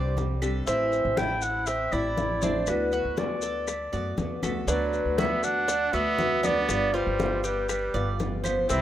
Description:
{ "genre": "latin, Cuban son and guajira", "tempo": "120 BPM", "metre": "4/4", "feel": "straight", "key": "G major", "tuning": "A4 = 439 Hz", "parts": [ { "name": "mellow clarinet", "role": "melody", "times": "0.0-8.8 s", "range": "B4 to G5", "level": "-29 LUFS", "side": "equal", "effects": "none" }, { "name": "nylon-string guitar", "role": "accompaniment", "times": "0.0-8.8 s", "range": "C3 to G4", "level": "-33 LUFS", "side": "left 5 dB", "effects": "none" }, { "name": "Cuban tres", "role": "arpeggios", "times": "0.0-8.8 s", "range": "C4 to D5", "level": "-31 LUFS", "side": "right 3 dB", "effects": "none" }, { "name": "upright bass", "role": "bass", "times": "0.0-8.8 s", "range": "G1 to F#2", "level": "-32 LUFS", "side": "equal", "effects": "none" }, { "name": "bongos", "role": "percussion", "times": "0.2-8.8 s", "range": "none", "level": "-34 LUFS", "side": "left 6 dB", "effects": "none" }, { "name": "congas", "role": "percussion", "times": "0.2-8.8 s", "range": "none", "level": "-34 LUFS", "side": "left 2 dB", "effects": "none" }, { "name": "maracas", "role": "percussion", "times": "0.2-8.8 s", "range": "none", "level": "-38 LUFS", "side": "left 7 dB", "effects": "none" }, { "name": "claves", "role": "percussion", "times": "0.4-8.7 s", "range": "none", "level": "-42 LUFS", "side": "right 5 dB", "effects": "none" }, { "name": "bright trumpet", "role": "second line", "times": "4.7-8.8 s", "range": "F#3 to D4", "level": "-31 LUFS", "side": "right 3 dB", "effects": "none" } ], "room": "light reverb", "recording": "rough home demo mix", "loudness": "-24 LUFS", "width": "side -12 dB against mid", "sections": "0.0-8.8 A section", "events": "none", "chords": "0.0 Csus2; 0.7 Am; 2.7 D6; 6.7 G7" }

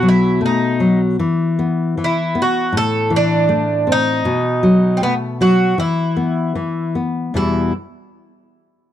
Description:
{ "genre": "fado-style ballad", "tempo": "78 BPM", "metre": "2/4", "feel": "rubato", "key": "unclear", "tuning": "A4 = 442 Hz", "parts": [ { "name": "Irish bouzouki", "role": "melody", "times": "0.0-7.7 s", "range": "B3 to A4", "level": "-19 LUFS", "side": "right 2 dB", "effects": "none" }, { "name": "nylon-string guitar", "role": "accompaniment", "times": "0.0-7.7 s", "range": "E2 to C4", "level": "-16 LUFS", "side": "left 2 dB", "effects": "none" } ], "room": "studio reverb", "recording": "dry, close 1970s-style studio recording", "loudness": "-14 LUFS", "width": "side -11 dB against mid", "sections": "0.0-7.3 A section; 7.3-8.9 B section", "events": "none", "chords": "0.0 B5; 1.2 E5; 2.7 Am; 4.3 B7; 5.8 E5; 7.3 Em" }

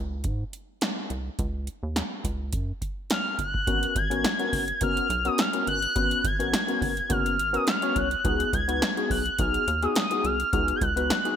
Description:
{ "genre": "early-eighties boogie funk", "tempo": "105 BPM", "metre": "4/4", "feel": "straight", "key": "G# dorian", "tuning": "A4 = 440 Hz", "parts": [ { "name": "rubbery square bass", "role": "bass", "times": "0.0-11.1 s", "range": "F#1 to G#2", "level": "-31 LUFS", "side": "right 1 dB", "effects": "none" }, { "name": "electro analog drum machine", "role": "drums", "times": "0.2-11.4 s", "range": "hi-hat, kick drum, snare drum", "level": "-29 LUFS", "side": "right 1 dB", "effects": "gated reverb" }, { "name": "expressive synth lead", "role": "melody", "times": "3.1-11.4 s", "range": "D#6 to G#6", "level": "-26 LUFS", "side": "left 1 dB", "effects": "chorus" }, { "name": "tine electric piano", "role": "accompaniment", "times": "3.7-11.4 s", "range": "B3 to C#5", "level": "-29 LUFS", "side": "left 3 dB", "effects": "analog chorus" } ], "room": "light reverb, digital ambience", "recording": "bright 1980s-style digital production", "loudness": "-24 LUFS", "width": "side -9 dB against mid", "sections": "0.0-3.7 A section; 3.7-11.4 B section", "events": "none", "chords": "0.0 N.C.; 3.7 G#m11; 8.2 C#9sus4" }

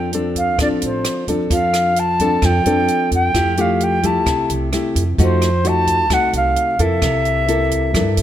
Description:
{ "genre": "bossa nova", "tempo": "130 BPM", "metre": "4/4", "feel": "straight", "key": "F major", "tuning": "A4 = 443 Hz", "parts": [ { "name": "concert flute", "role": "melody", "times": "0.0-8.2 s", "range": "C5 to A5", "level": "-18 LUFS", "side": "equal", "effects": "none" }, { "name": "nylon-string guitar", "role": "accompaniment", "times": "0.0-8.2 s", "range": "G2 to A4", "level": "-19 LUFS", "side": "left 2 dB", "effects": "none" }, { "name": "upright bass", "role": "bass", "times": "0.0-8.2 s", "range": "A1 to G2", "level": "-21 LUFS", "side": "right 1 dB", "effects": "none" }, { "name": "compact cocktail drum kit", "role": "drums", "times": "0.1-8.2 s", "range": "hi-hat, kick drum, rim click", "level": "-23 LUFS", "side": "right 1 dB", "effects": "none" } ], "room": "light reverb", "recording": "none", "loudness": "-14 LUFS", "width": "side -11 dB against mid", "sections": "0.0-8.2 A section", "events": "none", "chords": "0.0 Dm7/F; 1.5 F69; 3.3 Fmaj9; 5.2 F7b9; 7.0 C13" }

